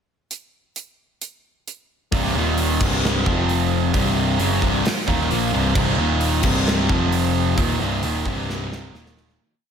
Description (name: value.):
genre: hard rock.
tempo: 132 BPM.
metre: 4/4.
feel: straight.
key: C minor.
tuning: A4 = 440 Hz.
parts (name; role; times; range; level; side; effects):
gated 80s drum kit; drums; 0.3-9.4 s; crash cymbal, hi-hat, kick drum, snare drum; -24 LUFS; equal; none.
overdriven electric guitar; riff; 2.1-9.4 s; C2 to Bb3; -23 LUFS; right 9 dB; none.
sludgy distorted guitar; riff; 2.1-9.4 s; C2 to Bb3; -23 LUFS; left 8 dB; overdrive.
overdriven picked electric bass; bass; 2.1-9.4 s; C1 to Bb1; -24 LUFS; equal; none.
room: moderate recital hall reverb, RT60 1.6 s.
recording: big arena sound.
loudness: -18 LUFS.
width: side -7 dB against mid.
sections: 0.3-2.1 pickup bar; 2.1-9.4 riff.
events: fade-out 7.6-9.4; drum fill 8.5-9.4.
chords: 0.3 N.C.; 2.1 C5; 2.4 Eb5; 2.8 C5; 3.3 F5; 3.9 Cm; 6.0 Eb5; 6.4 C5; 6.9 F5; 7.6 Cm; 8.9 Eb5.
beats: | 0.31 0.77 1.22 1.67 | 2.12 2.58 3.03 3.49 | 3.94 4.39 4.85 5.30 | 5.76 6.21 6.67 7.12 | 7.58 8.03 8.49 8.94.